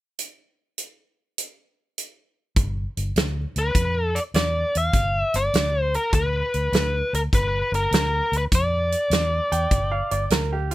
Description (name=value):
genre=electric blues shuffle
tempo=101 BPM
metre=4/4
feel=swing 68% on 8ths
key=G mixolydian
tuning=A4 = 435 Hz
part: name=natural country drum kit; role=drums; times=0.2-10.7 s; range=hi-hat, kick drum, snare drum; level=-23 LUFS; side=right 1 dB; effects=none
part: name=vintage muted fingered electric bass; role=bass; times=2.6-10.7 s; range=G1 to F2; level=-25 LUFS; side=equal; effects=none
part: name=biting lead guitar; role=melody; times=3.6-10.3 s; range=Bb4 to F5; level=-23 LUFS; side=left 1 dB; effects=overdrive
part: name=clear upright piano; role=second line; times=9.5-10.7 s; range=F4 to G5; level=-28 LUFS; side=right 5 dB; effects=digital delay
room=little or no reverb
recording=none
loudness=-20 LUFS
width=side -16 dB against mid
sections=0.2-2.6 A section; 2.6-10.7 B section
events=none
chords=0.2 N.C.; 2.6 G7